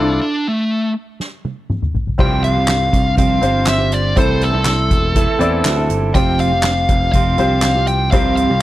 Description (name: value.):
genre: piano-driven pop.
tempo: 121 BPM.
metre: 4/4.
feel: straight.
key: F major.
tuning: A4 = 440 Hz.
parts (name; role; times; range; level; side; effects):
dark smooth lead guitar; melody; 0.0-8.6 s; A3 to G5; -18 LUFS; left 1 dB; overdrive.
clear baby grand piano; accompaniment; 0.0-8.6 s; G2 to D5; -22 LUFS; left 2 dB; none.
modern bright picked electric bass; bass; 0.0-8.6 s; E1 to E2; -18 LUFS; equal; none.
soft-mallet drum kit; drums; 1.2-8.5 s; crash cymbal, handclaps, hi-hat, kick drum, snare drum, toms; -18 LUFS; equal; none.
fingerpicked steel-string acoustic guitar; riff; 2.2-8.6 s; F2 to A4; -20 LUFS; right 4 dB; none.
room: little or no reverb.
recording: dry, close 1970s-style studio recording.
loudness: -13 LUFS.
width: side -15 dB against mid.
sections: 0.0-2.2 A section; 2.2-8.6 B section.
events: stop 0.2-2.2; drum fill 1.2-2.2.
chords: 0.0 Dmadd9; 2.2 Csus4; 4.2 Am; 6.2 Fsus2.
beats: | 0.20 0.70 1.20 1.69 | 2.19 2.68 3.18 3.67 | 4.17 4.66 5.16 5.65 | 6.15 6.64 7.14 7.64 | 8.13.